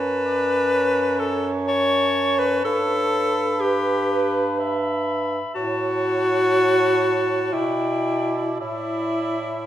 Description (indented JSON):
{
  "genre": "classical, lyrical piece for single-reed quartet",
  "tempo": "55-63 BPM",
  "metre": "3/4",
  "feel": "rubato",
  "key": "unclear",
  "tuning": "A4 = 443 Hz",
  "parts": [
    { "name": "clear clarinet", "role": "melody", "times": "0.0-9.7 s", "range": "E5 to B5", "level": "-30 LUFS", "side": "left 4 dB", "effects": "none" },
    { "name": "mellow alto saxophone", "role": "second line", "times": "0.0-9.5 s", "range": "B4 to E5", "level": "-29 LUFS", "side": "right 6 dB", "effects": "none" },
    { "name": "warm tenor saxophone", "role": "accompaniment", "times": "0.0-9.7 s", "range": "E4 to C#5", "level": "-21 LUFS", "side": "left 1 dB", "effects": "none" },
    { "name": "warm bass clarinet", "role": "bass", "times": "0.0-9.7 s", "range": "F#2 to B2", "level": "-25 LUFS", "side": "right 2 dB", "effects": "none" }
  ],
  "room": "wet recital hall reverb, RT60 1.5 s",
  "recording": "dark, warm production",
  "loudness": "-19 LUFS",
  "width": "side -12 dB against mid",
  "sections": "0.0-9.7 A section",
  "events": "none",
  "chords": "0.0 F#m; 2.6 Em/G; 5.6 A; 7.5 G/B; 8.6 Asus4",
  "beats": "0.71 1.67 | 2.63 3.61 4.58 | 5.56 6.53 7.54 | 8.61"
}